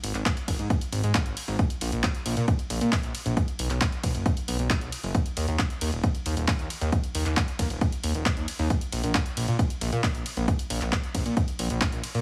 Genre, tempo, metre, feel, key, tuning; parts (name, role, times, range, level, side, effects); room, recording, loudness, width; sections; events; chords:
uplifting trance; 135 BPM; 4/4; straight; A4 = 440 Hz
fat analog bass; bass; 0.0-12.2 s; Eb1 to Bb2; -29 LUFS; equal; tube saturation, sidechain pumping
punchy analog drum machine; drums; 0.0-12.2 s; handclaps, hi-hat, ride cymbal; -34 LUFS; equal; overdrive, studio ambience
electronic kick drum; drums; 0.3-11.9 s; -28 LUFS; equal; overdrive, studio ambience
digital ambience; heavily compressed radio sound; -27 LUFS; mono
0.0-12.2 A section